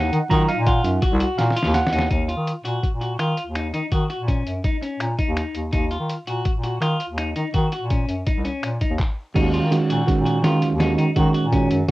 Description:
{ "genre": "progressive instrumental, band music in an uneven meter", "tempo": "166 BPM", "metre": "5/4", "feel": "straight", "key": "Eb minor", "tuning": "A4 = 441 Hz", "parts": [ { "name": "tine electric piano", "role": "accompaniment", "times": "0.0-2.1, 9.3-11.9 s", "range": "Eb3 to Bb5", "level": "-21 LUFS", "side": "right 3 dB", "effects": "cassette tape" }, { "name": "clean electric guitar", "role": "arpeggios", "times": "0.0-11.9 s", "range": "Db4 to Gb4", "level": "-27 LUFS", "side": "left 2 dB", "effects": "cassette tape" }, { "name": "clear bass clarinet", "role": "bass", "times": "0.0-11.9 s", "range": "C2 to Eb3", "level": "-23 LUFS", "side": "equal", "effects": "none" }, { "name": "lo-fi sampler-style drum kit", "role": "drums", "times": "0.1-11.9 s", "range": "crash cymbal, finger snaps, handclaps, hi-hat, kick drum, snare drum", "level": "-23 LUFS", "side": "equal", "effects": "cassette tape" } ], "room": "light reverb", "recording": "home recording on cassette", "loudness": "-19 LUFS", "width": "side -18 dB against mid", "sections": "0.0-2.1 A section; 2.1-9.4 B section; 9.4-11.9 C section", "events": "tine electric piano solo 0.0-2.1; drum fill 1.4-2.1", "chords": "0.0 Ebmadd9" }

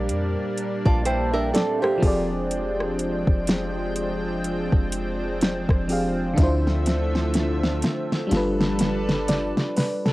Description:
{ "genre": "contemporary R&B", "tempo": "62 BPM", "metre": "4/4", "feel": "swing 58% on 16ths", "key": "unclear", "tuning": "A4 = 440 Hz", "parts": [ { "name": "FM electric piano", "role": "accompaniment", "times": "0.0-10.1 s", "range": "Bb2 to A5", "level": "-27 LUFS", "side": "equal", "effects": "chorus, cassette tape" }, { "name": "lush unison pad", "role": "sustained chords", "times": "0.0-10.1 s", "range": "D3 to G5", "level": "-28 LUFS", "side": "equal", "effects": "chorus, cassette tape" }, { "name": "warm 808-style bass", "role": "bass", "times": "0.0-9.5 s", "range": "F1 to D3", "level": "-28 LUFS", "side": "equal", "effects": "none" }, { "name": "smooth R&B drum kit", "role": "drums", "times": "0.1-10.1 s", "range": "hi-hat, kick drum, rim click, snare drum", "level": "-22 LUFS", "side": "equal", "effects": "overdrive, cassette tape" }, { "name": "nylon-string guitar", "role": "arpeggios", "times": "0.9-2.3 s", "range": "Bb3 to D5", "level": "-26 LUFS", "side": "right 3 dB", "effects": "cassette tape, analog delay, plate reverb" } ], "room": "light reverb", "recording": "home recording on cassette", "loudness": "-21 LUFS", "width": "side -18 dB against mid", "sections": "0.0-10.1 A section", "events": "drum fill 6.4-10.1", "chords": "0.0 Bb69; 2.0 Fm6; 6.4 Dm9; 8.3 G9" }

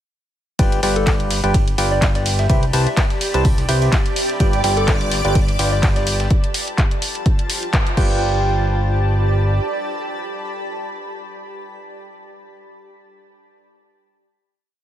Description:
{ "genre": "piano house", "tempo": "126 BPM", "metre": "4/4", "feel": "swing 55% on 16ths", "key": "G mixolydian", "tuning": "A4 = 440 Hz", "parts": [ { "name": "percussive organ stab", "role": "riff", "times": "0.6-11.0 s", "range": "C3 to A5", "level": "-23 LUFS", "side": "right 1 dB", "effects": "chorus, sidechain pumping, tape echo" }, { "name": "fat analog bass", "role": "bass", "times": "0.6-9.6 s", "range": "G1 to C2", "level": "-20 LUFS", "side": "equal", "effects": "sidechain pumping" }, { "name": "breakbeat sampler-style drum kit", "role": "drums", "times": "0.6-6.3 s", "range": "hi-hat, ride cymbal, snare drum", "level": "-32 LUFS", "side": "right 3 dB", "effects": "sidechain pumping on cymbals, high-pass filter on cymbals, high-pass filter on snare, sidechain pumping on hats, high-pass filter on hats" }, { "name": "electronic kick drum", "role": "drums", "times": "0.6-8.1 s", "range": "none", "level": "-17 LUFS", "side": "equal", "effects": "none" }, { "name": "house drum kit", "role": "drums", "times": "0.6-8.1 s", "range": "crash cymbal, handclaps, hi-hat", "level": "-24 LUFS", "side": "left 1 dB", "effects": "none" }, { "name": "granular cloud pad", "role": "texture", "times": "1.9-11.5 s", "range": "C4 to B5", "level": "-27 LUFS", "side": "equal", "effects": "built-in reverb, sidechain pumping" }, { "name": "soft struck synth lead", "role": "melody", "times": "1.0-6.1 s", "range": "A4 to E5", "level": "-28 LUFS", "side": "left 1 dB", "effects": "chorus, tape echo" }, { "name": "analog string pad", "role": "sustained chords", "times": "4.4-6.3 s", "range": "D5 to D6", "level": "-28 LUFS", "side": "equal", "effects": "ensemble chorus, sidechain pumping" } ], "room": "light reverb, digital ambience", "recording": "none", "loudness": "-16 LUFS", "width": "side -11 dB against mid", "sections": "0.6-8.2 drop; 8.2-12.0 final chord", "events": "drop 0.6-8.2; band accent 7.7", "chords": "0.6 G7; 2.5 Cmaj7; 4.2 G7; 6.3 F69; 8.0 G7" }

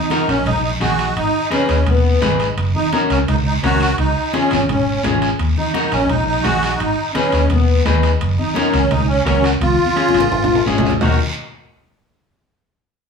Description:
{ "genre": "latin, cumbia", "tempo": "170 BPM", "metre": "4/4", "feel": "straight", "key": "Eb minor", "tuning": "A4 = 441 Hz", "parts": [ { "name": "musette accordion", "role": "melody", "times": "0.0-11.2 s", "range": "Cb4 to Gb4", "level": "-19 LUFS", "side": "right 1 dB", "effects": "none" }, { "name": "electric guitar at the edge of break-up", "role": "accompaniment", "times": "0.1-11.2 s", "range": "Db4 to Cb5", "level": "-20 LUFS", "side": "left 4 dB", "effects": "none" }, { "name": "congas", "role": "percussion", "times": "0.1-11.1 s", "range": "none", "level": "-24 LUFS", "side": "right 1 dB", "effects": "none" }, { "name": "guiro", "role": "percussion", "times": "0.1-11.1 s", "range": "none", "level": "-28 LUFS", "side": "right 3 dB", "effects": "none" }, { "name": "timbales", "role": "percussion", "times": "0.1-11.1 s", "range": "none", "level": "-26 LUFS", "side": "right 3 dB", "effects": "none" }, { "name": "fingered electric bass", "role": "bass", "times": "0.3-11.2 s", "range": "Gb1 to Eb2", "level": "-19 LUFS", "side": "left 1 dB", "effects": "none" } ], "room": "wet studio reverb, RT60 0.9 s", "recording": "band playing live in one room, small room ambience", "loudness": "-14 LUFS", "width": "side -6 dB against mid", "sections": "0.0-11.0 A section; 11.0-12.4 B section", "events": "drum fill 9.6-11.0", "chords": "0.0 Ebm; 1.2 Abm; 2.6 Gb; 4.0 Db; 5.4 Ebm; 6.8 Abm; 8.2 Gb; 9.6 Db; 11.0 Ebm" }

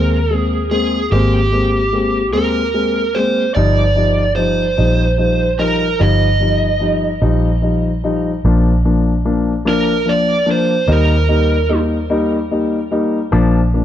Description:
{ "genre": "six-eight pop ballad", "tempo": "49 BPM (dotted quarters)", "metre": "6/8", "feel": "straight", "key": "Eb major", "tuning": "A4 = 437 Hz", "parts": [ { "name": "lead guitar through a small cranked amp", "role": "melody", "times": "0.0-11.8 s", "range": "G4 to Eb5", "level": "-18 LUFS", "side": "right 3 dB", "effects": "overdrive, tape echo" }, { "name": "dark concert grand piano", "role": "accompaniment", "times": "0.0-13.8 s", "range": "F3 to Eb4", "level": "-17 LUFS", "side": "left 3 dB", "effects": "none" }, { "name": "vintage muted fingered electric bass", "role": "bass", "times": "0.0-13.8 s", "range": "G1 to Eb2", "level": "-17 LUFS", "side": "right 1 dB", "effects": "none" } ], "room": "light reverb, studio ambience", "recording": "dark, warm production", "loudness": "-13 LUFS", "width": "side -10 dB against mid", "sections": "0.0-8.4 A section; 8.4-13.8 B section", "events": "none", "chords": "0.0 Abadd9; 3.6 Ebadd9/G; 8.4 Bb; 10.9 Eb; 13.3 Bb" }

